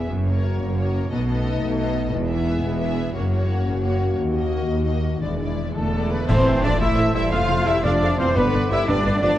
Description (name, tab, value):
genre	cinematic, heroic adventure film score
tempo	116 BPM (dotted quarters)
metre	12/8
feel	straight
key	A minor from 6.3 s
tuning	A4 = 443 Hz
part	rich symphonic violin section	melody	0.0-9.4 s	A4 to F5	-31 LUFS	left 4 dB	none
part	warm symphonic violin section	second line	0.0-9.3 s	E4 to F5	-32 LUFS	left 1 dB	none
part	rich symphonic viola section	accompaniment	0.0-9.3 s	G#3 to F5	-32 LUFS	right 1 dB	none
part	mellow French horn section	sustained chords	0.0-9.3 s	D3 to F#4	-27 LUFS	left 2 dB	none
part	concert harp	arpeggios	0.0-9.4 s	E2 to F5	-29 LUFS	left 5 dB	none
part	rich studio cello section	bass	0.0-9.4 s	D#2 to F4	-26 LUFS	right 1 dB	none
part	rich symphonic double bass section	bass	0.0-9.3 s	E1 to D#2	-25 LUFS	right 2 dB	none
part	cymbal swell, clash cymbals and concert bass drum	percussion	2.1-6.9 s	none	-30 LUFS	equal	none
part	clear clarinet	second line	5.8-9.4 s	A4 to F5	-30 LUFS	equal	none
part	silver concert flute	second line	5.8-9.4 s	A5 to F6	-33 LUFS	left 1 dB	none
part	clear trumpet	stabs	5.8-9.4 s	A4 to F5	-29 LUFS	right 1 dB	none
part	mellow cor anglais	second line	6.3-9.4 s	A4 to D5	-30 LUFS	right 2 dB	none
part	warm trombone section	sustained chords	6.3-9.4 s	C3 to B3	-32 LUFS	right 3 dB	none
part	concert snare drum, clash cymbals and concert bass drum	drums	6.3-9.4 s	none	-30 LUFS	equal	none
part	timpani	percussion	6.3-6.8 s	A2	-26 LUFS	equal	none
room	moderate scoring stage reverb, RT60 2.0 s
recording	worn, warbling old tape, cassette tape, warbly pitch drift, nothing above 10.9 kHz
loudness	-19 LUFS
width	side -13 dB against mid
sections	0.0-6.3 A section; 6.3-9.4 B section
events	band accent 6.3-6.6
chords	0.1 F#; 1.1 B7; 2.1 E; 3.1 F#; 4.2 D#m; 5.2 E7; 6.3 Am; 7.3 F; 8.4 G